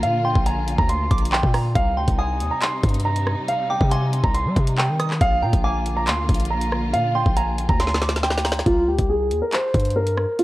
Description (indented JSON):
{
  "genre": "hip hop, drill",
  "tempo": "139 BPM",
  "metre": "4/4",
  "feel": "half-time",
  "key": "C minor",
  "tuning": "A4 = 439 Hz",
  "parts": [
    { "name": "dark grand piano", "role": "melody", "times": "0.0-10.4 s", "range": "F4 to C6", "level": "-23 LUFS", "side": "right 1 dB", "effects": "low-pass filter, digital delay" },
    { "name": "warm symphonic string section", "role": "sustained chords", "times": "0.0-8.6 s", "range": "C3 to F4", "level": "-30 LUFS", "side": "left 1 dB", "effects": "none" },
    { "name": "hard-hitting 808-style bass", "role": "bass", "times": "0.0-10.3 s", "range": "Bb1 to G3", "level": "-23 LUFS", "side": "equal", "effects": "none" },
    { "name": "drill drum kit", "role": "drums", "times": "0.0-10.4 s", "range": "handclaps, hi-hat, kick drum, rim click, snare drum", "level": "-22 LUFS", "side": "equal", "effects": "none" },
    { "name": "soft synth bell", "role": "second line", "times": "0.2-8.7 s", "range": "Bb5 to Eb6", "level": "-31 LUFS", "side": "right 2 dB", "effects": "chorus, phaser, digital delay" }
  ],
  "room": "light reverb",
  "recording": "worn, warbling old tape, cassette tape, warbly pitch drift",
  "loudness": "-18 LUFS",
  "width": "side -17 dB against mid",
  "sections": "0.0-8.7 A section; 8.7-10.4 B section",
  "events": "drum fill 7.8-8.7",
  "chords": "0.0 Bb; 1.8 Cm; 5.2 Bb; 8.7 C5"
}